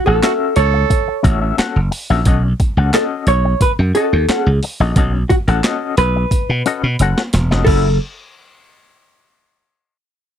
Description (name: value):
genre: funk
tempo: 89 BPM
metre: 4/4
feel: straight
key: F# dorian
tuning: A4 = 439 Hz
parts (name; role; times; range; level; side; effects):
- vintage hollow-body jazz guitar; melody; 0.0-8.0 s; F#4 to C#5; -18 LUFS; right 1 dB; none
- brilliant trombone; second line; 0.1-1.2, 7.7-7.9 s; E4 to A4; -21 LUFS; right 18 dB; none
- electric guitar with an envelope filter; accompaniment; 0.1-7.9 s; C#4 to F#5; -20 LUFS; left 8 dB; tremolo
- slap bass; bass; 0.1-8.0 s; E1 to B2; -15 LUFS; equal; none
- breakbeat sampler-style drum kit; drums; 0.2-7.8 s; crash cymbal, handclaps, hi-hat, kick drum, snare drum; -18 LUFS; equal; none
room: little or no reverb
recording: dry, close 1970s-style studio recording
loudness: -13 LUFS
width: side -9 dB against mid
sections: 0.0-7.7 A section; 7.7-10.4 B section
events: drum fill 6.3-7.7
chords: 0.0 F#m7; 2.3 B9; 7.7 F#m7